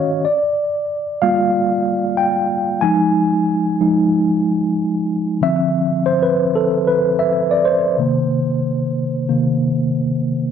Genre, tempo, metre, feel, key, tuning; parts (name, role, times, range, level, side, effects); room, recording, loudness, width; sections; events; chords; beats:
R&B; 93 BPM; 4/4; swing 53% on 16ths; A4 = 440 Hz
mellow tine electric piano; solo; 0.0-10.5 s; C3 to Ab5; -15 LUFS; equal; medium stereo tremolo, slapback echo
moderate small room reverb, RT60 0.5 s; -15 LUFS; side -8 dB against mid
0.0-10.5 A section
tine electric piano solo 0.0-10.5
0.2 Gm7; 2.8 Fm7; 5.4 Dm9; 8.0 Cm7
| 0.24 0.88 1.53 2.17 | 2.82 3.46 4.11 4.75 | 5.40 6.04 6.69 7.33 | 7.98 8.62 9.27 9.91